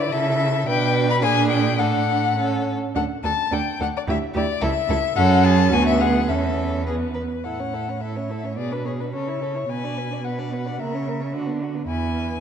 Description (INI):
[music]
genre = quick classical-period movement for string quartet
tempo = 108 BPM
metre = 2/4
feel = rubato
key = D major, A major from 5.2 s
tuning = A4 = 439 Hz
[part]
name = warm violin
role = melody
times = 0.0-12.4 s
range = B4 to B5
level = -24 LUFS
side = left 8 dB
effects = none
[part]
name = rich violin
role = second line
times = 0.0-12.4 s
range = D4 to D5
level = -30 LUFS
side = left 1 dB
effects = none
[part]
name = warm viola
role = accompaniment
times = 0.0-12.4 s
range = A#3 to E4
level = -25 LUFS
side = right 4 dB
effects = none
[part]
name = rich cello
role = bass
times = 0.0-12.4 s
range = C#2 to D3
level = -24 LUFS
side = right 4 dB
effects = none
[sound]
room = moderate concert hall reverb, RT60 1.9 s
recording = dark, warm production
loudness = -20 LUFS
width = side -8 dB against mid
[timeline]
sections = 0.0-7.5 A section; 7.5-12.4 B section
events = none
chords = 0.1 A/C#; 0.7 G/B; 1.2 Bb7; 1.8 D/A; 2.4 A; 3.0 D5; 4.1 E7(no3); 4.6 A/C# (rootless); 5.2 F#m; 5.7 Bm/D; 6.3 A/E; 6.9 E5; 7.5 A; 8.6 G#dim/B; 9.1 A/C#; 9.7 Bm; 10.8 A#dim/C#; 11.3 Bm/D; 11.9 E